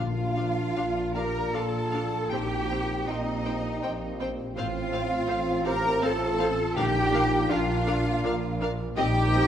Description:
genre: classical, slow romantic movement for symphony orchestra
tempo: 81 BPM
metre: 3/4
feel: uneven beats, rubato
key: Bb major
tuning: A4 = 440 Hz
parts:
  - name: rich studio violin section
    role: melody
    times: 0.0-9.4 s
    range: Eb5 to G5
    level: -39 LUFS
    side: left 4 dB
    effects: none
  - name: dark clarinet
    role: second line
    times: 0.0-9.5 s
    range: C4 to G4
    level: -34 LUFS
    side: equal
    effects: none
  - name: mellow hollow silver concert flute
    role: second line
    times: 0.0-9.5 s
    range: Eb5 to Bb5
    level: -36 LUFS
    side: left 1 dB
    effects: none
  - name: rich studio violin section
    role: second line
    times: 0.0-9.5 s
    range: Eb5 to Bb5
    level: -38 LUFS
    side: left 2 dB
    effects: none
  - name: rich studio viola section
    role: accompaniment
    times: 0.0-9.4 s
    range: C4 to C5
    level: -36 LUFS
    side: right 1 dB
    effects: none
  - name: clear trombone section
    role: sustained chords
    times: 0.0-9.5 s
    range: A2 to C4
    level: -36 LUFS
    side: right 3 dB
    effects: none
  - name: warm French horn section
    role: sustained chords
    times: 0.0-9.5 s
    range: C4 to G4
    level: -36 LUFS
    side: left 3 dB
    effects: none
  - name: concert harp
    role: arpeggios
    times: 0.0-9.5 s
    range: A2 to D5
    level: -37 LUFS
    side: left 7 dB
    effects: none
  - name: mellow trumpet section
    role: stabs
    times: 0.0-9.5 s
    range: Eb4 to Bb4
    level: -34 LUFS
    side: right 1 dB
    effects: none
  - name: rich studio cello section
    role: bass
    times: 0.0-9.5 s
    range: Eb4 to Bb4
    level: -30 LUFS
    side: right 1 dB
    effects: none
  - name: rich studio double bass section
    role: bass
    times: 0.0-9.5 s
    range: A1 to Bb1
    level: -32 LUFS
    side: right 2 dB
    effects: none
  - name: timpani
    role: percussion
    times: 0.0-1.1, 6.8-7.8 s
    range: Bb2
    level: -34 LUFS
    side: left 2 dB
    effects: none
room: moderate scoring stage reverb, RT60 1.5 s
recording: none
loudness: -24 LUFS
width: side -9 dB against mid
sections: 0.0-9.5 A section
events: none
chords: 0.0 Bb; 2.3 Cm7/Bb; 4.6 F/A; 6.8 Bb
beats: 0.77 1.54 | 2.31 3.08 3.83 | 4.57 5.29 6.03 | 6.77 7.51 8.24 | 8.98

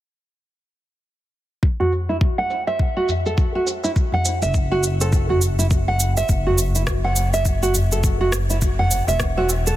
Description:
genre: organic downtempo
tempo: 103 BPM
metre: 4/4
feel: swing 59% on 16ths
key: unclear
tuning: A4 = 437 Hz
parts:
  - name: electronic kick drum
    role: drums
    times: 1.6-9.3 s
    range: none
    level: -20 LUFS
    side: equal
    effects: none
  - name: electronic shaker and rim click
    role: drums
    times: 1.6-9.8 s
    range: none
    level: -26 LUFS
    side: right 1 dB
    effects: low-pass filter on perc, low-pass filter on snare, low-pass filter on room
  - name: nylon-string guitar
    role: arpeggios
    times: 1.8-9.8 s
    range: E4 to F#5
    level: -22 LUFS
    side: right 2 dB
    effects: low-pass filter, ping-pong delay
  - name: tabla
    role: percussion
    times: 1.8-9.6 s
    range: none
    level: -27 LUFS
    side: equal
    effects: none
  - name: upright bass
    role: bass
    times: 4.4-9.8 s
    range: E1 to F#1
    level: -21 LUFS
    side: equal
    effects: tube saturation, sidechain pumping
room: light reverb, small room ambience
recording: dense, heavily limited modern master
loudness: -17 LUFS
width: side -14 dB against mid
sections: 1.6-6.3 A section; 6.3-9.8 B section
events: none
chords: 1.6 N.C.; 6.3 Esus2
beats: | 1.63 2.21 2.80 3.38 | 3.96 4.54 5.13 5.71 | 6.29 6.87 7.46 8.04 | 8.62 9.20

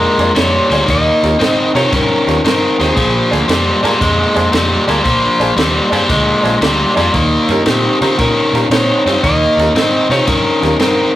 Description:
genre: electric blues shuffle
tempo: 115 BPM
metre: 4/4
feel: swing 67% on 8ths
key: unclear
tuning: A4 = 440 Hz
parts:
  - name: clean lap steel guitar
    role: melody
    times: 0.0-3.3, 7.7-11.2 s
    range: G4 to Eb5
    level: -17 LUFS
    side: left 1 dB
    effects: none
  - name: biting overdriven guitar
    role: riff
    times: 0.0-11.1 s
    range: Bb2 to Db4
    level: -13 LUFS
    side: left 1 dB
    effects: spring reverb
  - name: vintage muted fingered electric bass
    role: bass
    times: 0.0-11.0 s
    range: Bb1 to Db3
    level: -20 LUFS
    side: right 1 dB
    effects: none
  - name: tack piano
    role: accompaniment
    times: 0.2-11.2 s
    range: Db4 to D5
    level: -21 LUFS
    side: right 2 dB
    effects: none
  - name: compact cocktail drum kit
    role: drums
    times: 0.2-11.0 s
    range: kick drum, ride cymbal, snare drum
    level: -19 LUFS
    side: equal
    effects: none
room: moderate stone room reverb, RT60 1.2 s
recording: rough rehearsal-room recording, warm saturation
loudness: -10 LUFS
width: side -14 dB against mid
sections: 0.0-11.2 A section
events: none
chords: 0.0 Bb9; 0.9 Eb9; 3.0 Bb7; 7.1 Eb9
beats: 0.36 | 0.88 1.40 1.92 2.44 | 2.97 3.49 4.01 4.53 | 5.05 5.57 6.09 6.62 | 7.14 7.66 8.18 8.70 | 9.23 9.75 10.27 10.79

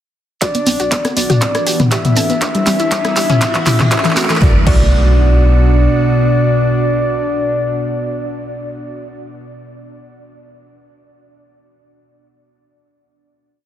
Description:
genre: progressive house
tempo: 120 BPM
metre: 4/4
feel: straight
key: B minor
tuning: A4 = 438 Hz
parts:
  - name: soft octave-layered synth lead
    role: melody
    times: 0.4-9.1 s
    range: D5 to E5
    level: -20 LUFS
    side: left 1 dB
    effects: chorus, tape echo
  - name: evolving wavetable pad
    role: sustained chords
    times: 0.9-8.8 s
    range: B2 to G4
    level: -19 LUFS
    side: equal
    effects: chorus, built-in reverb, sidechain pumping
  - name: analog pluck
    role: arpeggios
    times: 0.4-9.1 s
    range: E3 to A4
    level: -21 LUFS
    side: left 1 dB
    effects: chorus, sidechain pumping, tape echo
  - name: deep house drum kit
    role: drums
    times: 0.4-4.8 s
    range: crash cymbal, handclaps, hi-hat, snare drum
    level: -21 LUFS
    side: right 1 dB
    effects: overdrive, studio reverb
  - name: electronic kick drum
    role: drums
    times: 0.4-4.8 s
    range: none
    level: -16 LUFS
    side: equal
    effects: overdrive, high-pass filter on kick, studio reverb
  - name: shekere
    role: percussion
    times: 0.4-4.4 s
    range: none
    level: -25 LUFS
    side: right 2 dB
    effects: none
  - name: riser and impact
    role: sound effects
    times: 1.3-8.9 s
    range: none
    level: -24 LUFS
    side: right 1 dB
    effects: none
  - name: round analog bass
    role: bass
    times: 0.7-5.9 s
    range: E1 to B1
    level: -12 LUFS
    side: equal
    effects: sidechain pumping, high-pass filter
  - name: punchy analog drum machine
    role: percussion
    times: 0.7-4.4 s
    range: congas, rim click, toms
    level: -17 LUFS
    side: left 1 dB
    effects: overdrive, sidechain pumping on perc, studio reverb, sidechain pumping on snare, sidechain pumping on toms
room: light reverb, digital ambience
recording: dense, heavily limited modern master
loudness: -11 LUFS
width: side -11 dB against mid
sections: 0.4-4.4 build; 4.4-8.4 final chord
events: build-up 0.4-4.4; drum fill 0.4-4.4; filter sweep on synth arpeggio sound 0.4-4.4; filter sweep on ambient pad 0.4-4.4; riser 1.3-4.4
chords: 0.4 Bm; 1.4 Em7; 2.4 G; 3.4 A; 4.4 Bm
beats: | 0.42 0.92 1.42 1.92 | 2.42 2.92 3.42 3.92 | 4.42 4.92 5.42 5.92 | 6.42 6.92 7.42 7.92

